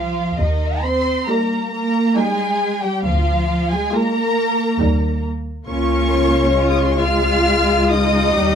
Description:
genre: classical, slow romantic movement for string orchestra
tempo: 68 BPM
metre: 3/4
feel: rubato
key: unclear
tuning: A4 = 435 Hz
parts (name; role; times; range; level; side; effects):
- rich studio violin section; melody; 0.0-8.6 s; Eb5 to F6; -23 LUFS; equal; none
- rich studio violin section; second line; 0.0-8.6 s; Eb4 to F5; -22 LUFS; left 2 dB; none
- warm studio viola section; accompaniment; 0.0-8.6 s; G3 to G4; -21 LUFS; left 2 dB; none
- dark studio double bass section; bass; 0.0-8.6 s; C2 to Eb2; -21 LUFS; right 1 dB; none
- rich studio cello section; bass; 0.0-8.6 s; Eb3 to F4; -21 LUFS; right 1 dB; none
room: light reverb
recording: dark, warm production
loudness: -15 LUFS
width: side -8 dB against mid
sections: 0.0-8.6 A section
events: none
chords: 0.4 Eb; 3.0 Bb7/D; 4.8 Eb; 5.7 Bbm/Db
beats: | 0.39 1.28 2.16 | 3.04 3.94 4.81 | 5.68 6.57 7.46 | 8.36

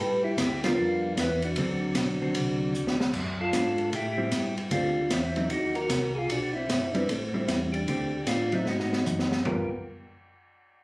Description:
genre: soul jazz organ trio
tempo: 152 BPM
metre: 4/4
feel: swing 64% on 8ths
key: unclear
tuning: A4 = 441 Hz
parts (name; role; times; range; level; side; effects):
- percussive tonewheel organ; melody; 0.0-9.7 s; A3 to B4; -29 LUFS; equal; slow rotary speaker
- mellow tonewheel organ; bass; 0.0-9.7 s; F#1 to A2; -34 LUFS; equal; slow rotary speaker
- open jazz drum kit; drums; 0.4-9.6 s; crash cymbal, hi-hat, kick drum, ride cymbal, snare drum, toms; -31 LUFS; equal; none
- hollow-body jazz guitar; accompaniment; 0.6-9.7 s; D3 to A#4; -30 LUFS; equal; none
room: light reverb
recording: recorded on a phone in the room, club reverb, compression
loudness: -25 LUFS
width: side -24 dB against mid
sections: 0.0-3.1 A section; 3.1-9.5 B section; 9.5-10.8 C section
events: band accent 0.6; drum fill 2.7-3.1, 8.7-9.5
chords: 0.0 G7#9; 1.6 D7; 3.1 F#mmaj7; 3.9 Am7; 4.7 D7sus4; 5.5 Cm7b5; 6.3 Bm; 7.1 Am7; 7.9 D7sus4; 8.7 Ab5; 9.5 G7#9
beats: 0.38 0.78 1.17 | 1.56 1.96 2.35 2.75 | 3.14 3.54 3.93 4.32 | 4.72 5.11 5.51 5.90 | 6.30 6.69 7.09 7.48 | 7.88 8.27 8.67 9.06 | 9.46

